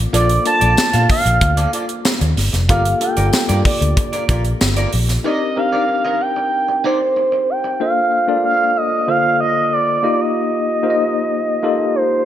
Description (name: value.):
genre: polished 1980s jazz-funk pop.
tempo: 94 BPM.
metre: 4/4.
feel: straight.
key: unclear.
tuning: A4 = 440 Hz.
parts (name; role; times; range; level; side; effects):
tine electric piano; accompaniment; 0.0-12.2 s; D3 to Eb5; -21 LUFS; left 2 dB; overdrive, fast stereo tremolo, lush chorus.
vintage muted fingered electric bass; bass; 0.0-5.2 s; F1 to Bb2; -17 LUFS; equal; none.
expressive synth lead; melody; 0.1-12.2 s; C5 to A5; -17 LUFS; right 1 dB; chorus.
electric guitar at the edge of break-up; riff; 0.1-7.7 s; Eb4 to F5; -25 LUFS; right 2 dB; lush chorus.
crisp fusion drum kit; drums; 0.1-5.2 s; hi-hat, kick drum, snare drum; -18 LUFS; equal; gated reverb.
tambourine; percussion; 0.8-4.8 s; none; -29 LUFS; left 9 dB; none.
room: light reverb, studio reverb.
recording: bright 1980s-style digital production.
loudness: -14 LUFS.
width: side -11 dB against mid.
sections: 0.0-7.8 A section; 7.8-12.2 B section.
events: analog synth lead solo 0.0-7.8.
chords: 0.0 Bbmaj7; 2.7 Gm7; 5.2 Cm9; 7.8 Bbmaj9; 10.0 Eb.